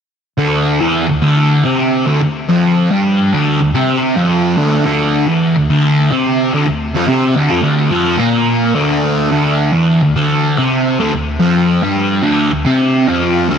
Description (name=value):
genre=rock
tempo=108 BPM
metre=4/4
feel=straight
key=D minor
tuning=A4 = 440 Hz
part: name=fuzz guitar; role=solo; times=0.4-13.6 s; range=D2 to C4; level=-11 LUFS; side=equal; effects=distortion, phaser, ping-pong delay
room=moderate plate reverb, RT60 2.5 s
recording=dreamy mix soaked in reverb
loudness=-11 LUFS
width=side -7 dB against mid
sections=0.4-13.6 A section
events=none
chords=0.4 Dm